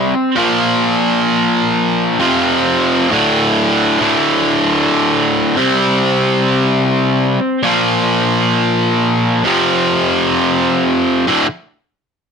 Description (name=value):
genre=rock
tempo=free time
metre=none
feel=none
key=D minor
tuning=A4 = 440 Hz
part: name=distorted electric guitar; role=solo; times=0.0-11.5 s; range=D2 to C4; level=-12 LUFS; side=equal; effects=overdrive
room=moderate studio reverb, RT60 0.5 s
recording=none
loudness=-12 LUFS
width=side -6 dB against mid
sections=0.0-4.0 A section; 4.0-11.3 B section; 11.3-12.3 C section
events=none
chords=0.4 Bb5; 2.2 F5; 3.1 D5; 5.6 C5; 7.6 Bb5; 9.5 F5; 11.3 D5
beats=free time